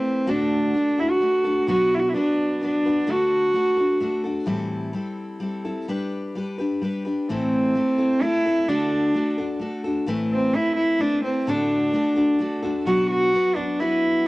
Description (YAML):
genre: folk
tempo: 129 BPM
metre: 3/4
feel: straight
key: A dorian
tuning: A4 = 440 Hz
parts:
  - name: warm cello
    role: melody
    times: 0.0-4.0, 7.3-14.3 s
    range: C4 to F#4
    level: -20 LUFS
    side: equal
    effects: cassette tape
  - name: picked steel-string acoustic guitar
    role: accompaniment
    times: 0.0-14.3 s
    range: A2 to B4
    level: -25 LUFS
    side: left 1 dB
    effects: cassette tape
room: light reverb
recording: home recording on cassette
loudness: -20 LUFS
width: side -20 dB against mid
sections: 0.0-10.1 A section; 10.1-14.3 A section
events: none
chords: 0.3 D/A; 1.7 Bm; 3.1 D; 4.5 Am7; 5.9 G; 7.3 Am; 8.7 D; 10.1 Amadd9; 11.5 D/A; 12.9 Bm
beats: | 0.29 0.75 1.22 | 1.69 2.15 2.62 | 3.08 3.55 4.02 | 4.48 4.95 5.42 | 5.88 6.35 6.82 | 7.28 7.75 8.22 | 8.68 9.15 9.62 | 10.08 10.55 11.01 | 11.48 11.95 12.41 | 12.88 13.35 13.81 | 14.28